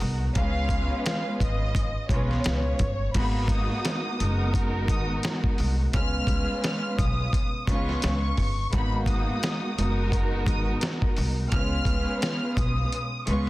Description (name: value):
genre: hip hop, boom-bap hip-hop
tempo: 86 BPM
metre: 4/4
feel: swing 57% on 16ths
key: G# dorian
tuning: A4 = 439 Hz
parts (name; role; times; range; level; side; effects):
- rich studio string section; accompaniment; 0.0-13.5 s; G#3 to B4; -30 LUFS; right 1 dB; high-pass filter, low-pass filter
- upright bass; bass; 0.0-13.5 s; F#1 to C#2; -27 LUFS; equal; none
- dusty soul sampler-style drum kit; drums; 0.0-13.5 s; crash cymbal, hi-hat, kick drum, snare drum; -27 LUFS; equal; none
- rich studio violin section; melody; 0.3-13.5 s; C#5 to E#6; -33 LUFS; left 1 dB; high-pass filter, low-pass filter, tape echo
room: small room ambience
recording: dense, heavily limited modern master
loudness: -23 LUFS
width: side -18 dB against mid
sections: 0.0-3.1 A section; 3.1-13.5 B section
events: kick muted 12.9-13.5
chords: 0.4 C#7; 3.1 G#m9; 5.9 C#7; 8.7 G#m9; 11.5 C#7